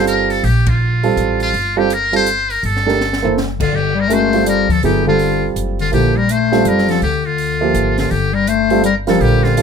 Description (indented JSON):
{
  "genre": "modal jazz",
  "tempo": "164 BPM",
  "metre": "3/4",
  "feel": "swing 63% on 8ths",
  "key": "G dorian",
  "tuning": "A4 = 441 Hz",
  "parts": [
    { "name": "trumpet with metal mute", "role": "melody", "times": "0.0-9.6 s", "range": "F4 to C5", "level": "-19 LUFS", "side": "left 1 dB", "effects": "plate reverb" },
    { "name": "warm grand piano", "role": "accompaniment", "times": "0.0-9.6 s", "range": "F3 to E5", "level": "-17 LUFS", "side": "right 7 dB", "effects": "none" },
    { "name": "upright bass", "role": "bass", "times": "0.0-9.6 s", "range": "F#1 to D2", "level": "-19 LUFS", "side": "equal", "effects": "none" },
    { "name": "open jazz drum kit", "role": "drums", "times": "0.1-9.6 s", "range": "crash cymbal, hi-hat, kick drum, ride cymbal, snare drum, toms", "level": "-26 LUFS", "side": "left 1 dB", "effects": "none" },
    { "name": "warm bass clarinet", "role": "second line", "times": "3.6-9.6 s", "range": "D3 to A3", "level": "-17 LUFS", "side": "left 10 dB", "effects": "none" }
  ],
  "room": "light reverb",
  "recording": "close, detailed microphones",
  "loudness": "-13 LUFS",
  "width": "side -6 dB against mid",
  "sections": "0.0-9.6 A section",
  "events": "band accent 0.6; drum fill 3.0-3.4",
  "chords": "0.0 Gm9"
}